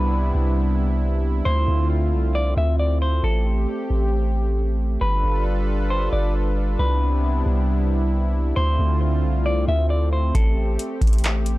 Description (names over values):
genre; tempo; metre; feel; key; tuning
hip hop, atmospheric cloud-rap; 135 BPM; 4/4; half-time; unclear; A4 = 440 Hz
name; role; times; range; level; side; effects
semi-hollow electric guitar; melody; 0.0-11.6 s; A4 to E5; -28 LUFS; equal; analog delay
warm analog pad; sustained chords; 0.0-11.6 s; C3 to B4; -26 LUFS; equal; chorus, sidechain pumping
long sustained 808-style bass; bass; 0.0-11.6 s; G1 to D2; -20 LUFS; equal; transformer saturation
booming analog drum machine; drums; 10.3-11.6 s; handclaps, hi-hat, kick drum; -20 LUFS; equal; overdrive
room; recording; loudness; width
little or no reverb; dry, gritty hardware recording; -19 LUFS; side -18 dB against mid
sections
0.0-11.6 A section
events
none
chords
0.0 Cmaj7; 1.5 Dm7; 3.2 Am7; 5.0 G7; 6.8 Cmaj7; 8.6 Dm7; 10.3 Am7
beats
0.13 0.57 1.01 | 1.46 1.90 2.35 2.79 | 3.24 3.68 4.13 4.57 | 5.01 5.46 5.90 6.35 | 6.79 7.24 7.68 8.13 | 8.57 9.02 9.46 9.90 | 10.35 10.79 11.24